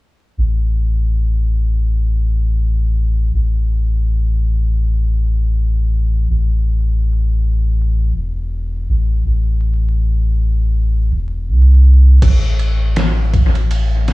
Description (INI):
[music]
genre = trip hop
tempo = 81 BPM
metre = 4/4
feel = swing 58% on 16ths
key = unclear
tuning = A4 = 440 Hz
[part]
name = soft dub sub bass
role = bass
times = 0.4-14.1 s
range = E1 to C2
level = -13 LUFS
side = equal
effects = none
[part]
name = trip hop sampler-style drum kit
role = drums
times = 12.2-14.1 s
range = crash cymbal, kick drum, ride cymbal, snare drum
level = -18 LUFS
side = equal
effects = studio reverb, analog delay
[sound]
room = digital ambience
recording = echo-heavy mix, vinyl crackle, low-pass filter, small room reverb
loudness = -13 LUFS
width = side -18 dB against mid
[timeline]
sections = 0.4-12.2 A section; 12.2-14.1 B section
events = filter sweep 0.4-12.2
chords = none